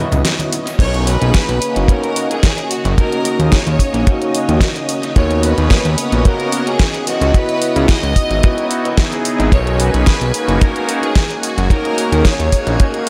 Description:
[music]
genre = nu-disco, nu disco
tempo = 110 BPM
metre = 4/4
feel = straight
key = B major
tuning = A4 = 440 Hz
[part]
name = warm analog pad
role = accompaniment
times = 0.0-13.1 s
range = A#3 to D#5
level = -23 LUFS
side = equal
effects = chorus, cassette tape, sidechain pumping, tape echo
[part]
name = string machine, full ensemble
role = sustained chords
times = 0.0-13.1 s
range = C#4 to G#5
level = -29 LUFS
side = equal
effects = ensemble chorus, sidechain pumping
[part]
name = electric guitar at the edge of break-up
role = riff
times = 0.0-13.0 s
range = D#4 to D#5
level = -26 LUFS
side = equal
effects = lush chorus, tape echo
[part]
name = fat analog bass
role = bass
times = 0.1-12.8 s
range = F#1 to D#2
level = -18 LUFS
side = equal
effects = tube saturation, sidechain pumping
[part]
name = pop drum kit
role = drums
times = 0.1-13.1 s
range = crash cymbal, hi-hat, snare drum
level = -24 LUFS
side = equal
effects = overdrive, tape echo
[part]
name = congas and egg shaker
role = percussion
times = 0.1-0.8 s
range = none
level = -25 LUFS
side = equal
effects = tape echo
[part]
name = clear studio violin section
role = melody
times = 0.8-13.1 s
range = F#4 to D#5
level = -25 LUFS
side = equal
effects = tape echo
[part]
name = kick drum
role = drums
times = 0.8-12.9 s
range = none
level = -14 LUFS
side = equal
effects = none
[sound]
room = light reverb, studio ambience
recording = echo-heavy mix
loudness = -15 LUFS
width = mono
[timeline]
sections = 0.8-13.1 A section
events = break 0.3-0.8; drop 0.8-13.1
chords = 0.0 C#m11; 0.8 Bmaj9; 3.0 D#m7; 5.2 G#m11/D#; 7.1 C#m11; 9.5 Bmaj9; 11.7 D#m7

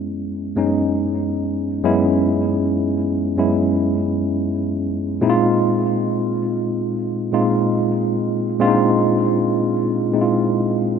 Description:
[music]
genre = R&B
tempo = 71 BPM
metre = 4/4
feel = swing 64% on 16ths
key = unclear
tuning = A4 = 440 Hz
[part]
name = tine electric piano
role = solo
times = 0.0-11.0 s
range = Gb2 to F4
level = -17 LUFS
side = equal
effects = overdrive, medium stereo tremolo, tape echo
[sound]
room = moderate plate reverb, RT60 3.1 s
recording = rough home demo mix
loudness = -17 LUFS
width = side -7 dB against mid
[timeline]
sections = 0.0-11.0 A section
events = none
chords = 0.0 Gb9sus4; 5.2 Bb9sus4

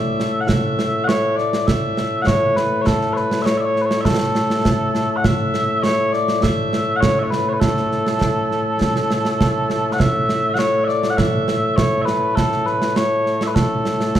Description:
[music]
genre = scottish traditional, Scottish pipe music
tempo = 101 BPM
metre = 4/4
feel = straight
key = A major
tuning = A4 = 441 Hz
[part]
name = mellow small bagpipes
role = melody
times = 0.0-14.2 s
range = A2 to F#5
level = -18 LUFS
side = left 1 dB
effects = none
[part]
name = concert snare drum and concert bass drum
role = drums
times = 0.2-14.2 s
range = none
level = -21 LUFS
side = right 2 dB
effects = none
[sound]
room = wet recital hall reverb, RT60 1.6 s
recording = recorded in a church or concert hall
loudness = -16 LUFS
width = side -11 dB against mid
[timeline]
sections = 0.0-10.0 A section; 10.0-14.2 A section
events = none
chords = none

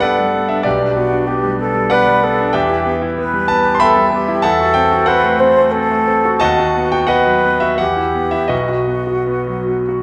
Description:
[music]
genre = classical, romantic duo for flute and grand piano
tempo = 70-99 BPM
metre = 3/4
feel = rubato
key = E minor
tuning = A4 = 440 Hz
[part]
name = mellow silver concert flute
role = melody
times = 0.0-10.0 s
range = F#4 to C5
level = -19 LUFS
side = equal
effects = none
[part]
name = bright concert grand piano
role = accompaniment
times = 0.0-10.0 s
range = B1 to C6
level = -17 LUFS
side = equal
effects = none
[sound]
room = wet concert hall reverb, RT60 1.7 s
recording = none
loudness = -15 LUFS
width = mono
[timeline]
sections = 0.0-10.0 A section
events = none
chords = 0.0 G; 0.7 G/B; 2.5 Em; 4.4 F#m7b5/E; 6.4 B/D#; 7.8 Em; 8.5 B

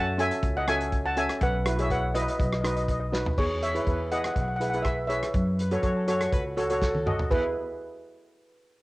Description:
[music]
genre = calypso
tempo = 122 BPM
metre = 4/4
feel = straight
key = E major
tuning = A4 = 440 Hz
[part]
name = steel pan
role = melody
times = 0.0-7.5 s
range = G#4 to A5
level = -29 LUFS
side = equal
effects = cassette tape
[part]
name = steel pan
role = accompaniment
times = 0.0-7.5 s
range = C#4 to D#5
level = -30 LUFS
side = right 1 dB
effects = cassette tape
[part]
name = upright bass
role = bass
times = 0.0-7.5 s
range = B1 to F#2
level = -31 LUFS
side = equal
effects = none
[part]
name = warm soul drum kit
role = drums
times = 0.2-7.4 s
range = crash cymbal, hi-hat, kick drum, rim click, snare drum, toms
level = -30 LUFS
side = equal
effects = cassette tape
[part]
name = warm horn section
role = second line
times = 5.6-7.5 s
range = G#4 to C#5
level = -36 LUFS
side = left 1 dB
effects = cassette tape
[sound]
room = moderate spring reverb, RT60 1.4 s, small room ambience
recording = home recording on cassette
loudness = -24 LUFS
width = side -20 dB against mid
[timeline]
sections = 0.0-3.4 A section; 3.4-7.3 B section; 7.3-8.8 C section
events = drum fill 3.1, 6.8-7.3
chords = 0.0 F#m; 1.4 Bsus4; 2.4 B; 3.4 E; 5.3 F#m7; 7.3 E

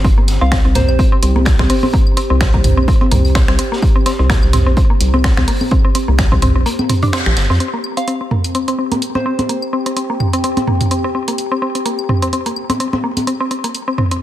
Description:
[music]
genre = minimal techno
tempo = 127 BPM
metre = 4/4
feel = swing 56% on 16ths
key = unclear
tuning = A4 = 440 Hz
[part]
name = mallet-like synth pluck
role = riff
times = 0.0-14.1 s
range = Bb3 to G4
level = -20 LUFS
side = left 1 dB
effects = chorus, sidechain pumping, ping-pong delay
[part]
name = rubbery square bass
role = bass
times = 0.0-7.6 s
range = G1 to F2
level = -14 LUFS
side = equal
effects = sidechain pumping
[part]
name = electronic kick drum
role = drums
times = 0.0-6.4 s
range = none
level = -14 LUFS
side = equal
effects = none
[part]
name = raw garage drum kit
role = drums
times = 0.0-7.6 s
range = hi-hat, snare drum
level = -29 LUFS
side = equal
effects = high-pass filter on hats, high-pass filter on snare, high-pass filter on room
[part]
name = warbly tape-like pad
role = texture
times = 0.0-14.2 s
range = C4 to G5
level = -24 LUFS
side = equal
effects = chorus, built-in reverb, sidechain pumping
[part]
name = punchy analog drum machine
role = drums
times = 0.3-14.2 s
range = finger snaps, hi-hat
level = -23 LUFS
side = right 1 dB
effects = none
[part]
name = electronic claves, toms and congas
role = percussion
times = 0.3-14.1 s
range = none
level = -19 LUFS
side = right 1 dB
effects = ping-pong delay
[part]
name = soft synth bell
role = melody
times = 0.4-1.0, 8.0-9.6 s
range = C5 to F5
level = -24 LUFS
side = right 4 dB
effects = chorus, ping-pong delay
[sound]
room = light reverb, digital ambience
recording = none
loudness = -12 LUFS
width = side -13 dB against mid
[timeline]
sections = 0.0-7.6 A section; 7.6-14.2 B section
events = kick drops out 6.7-7.6; band accent 7.1; filter sweep on synth arpeggio sound 7.6-14.2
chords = 0.0 C5

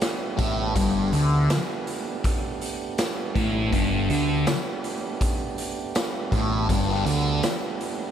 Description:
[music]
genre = psychedelic rock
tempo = 81 BPM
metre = 4/4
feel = straight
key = unclear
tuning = A4 = 437 Hz
[part]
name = tonewheel organ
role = sustained chords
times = 0.0-8.1 s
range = A3 to G4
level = -32 LUFS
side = right 6 dB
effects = overdrive, stopped rotary speaker
[part]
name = raw garage drum kit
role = drums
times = 0.0-8.0 s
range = hi-hat, kick drum, snare drum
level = -27 LUFS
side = equal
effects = none
[part]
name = tambourine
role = percussion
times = 0.0-7.6 s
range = none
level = -41 LUFS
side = left 12 dB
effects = none
[part]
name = thick fuzz guitar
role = riff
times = 0.4-7.4 s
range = G2 to D3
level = -23 LUFS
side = left 1 dB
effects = distortion, phaser
[part]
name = growling picked electric bass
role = bass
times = 0.4-7.4 s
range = G1 to D2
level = -27 LUFS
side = equal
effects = overdrive
[sound]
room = light reverb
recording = none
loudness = -22 LUFS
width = side -9 dB against mid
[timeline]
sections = 0.0-8.1 A section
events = none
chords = 0.0 Gadd9

